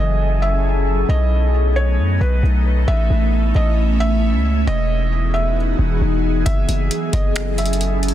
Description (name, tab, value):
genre	hip hop, atmospheric cloud-rap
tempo	134 BPM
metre	4/4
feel	half-time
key	F# dorian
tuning	A4 = 440 Hz
part	felt-muted upright piano	melody	0.0-8.1 s	B4 to E5	-25 LUFS	right 2 dB	tape echo
part	ethereal airy pad	sustained chords	0.0-8.1 s	E3 to A4	-22 LUFS	equal	ensemble chorus, built-in reverb, phaser, sidechain pumping
part	warm 808-style bass	bass	0.0-8.1 s	E1 to F#2	-17 LUFS	equal	none
part	booming analog drum machine	drums	6.5-8.1 s	finger snaps, hi-hat, kick drum	-22 LUFS	equal	soft clipping on snare
room	little or no reverb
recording	dense, heavily limited modern master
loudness	-15 LUFS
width	side -12 dB against mid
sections	0.0-8.1 A section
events	none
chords	0.0 F#m7; 1.1 B7; 2.9 A; 4.7 Emaj7; 6.5 F#m7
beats	0.19 0.64 | 1.09 1.54 1.98 2.43 | 2.88 3.33 3.77 4.22 | 4.67 5.12 5.57 6.01 | 6.46 6.91 7.36 7.80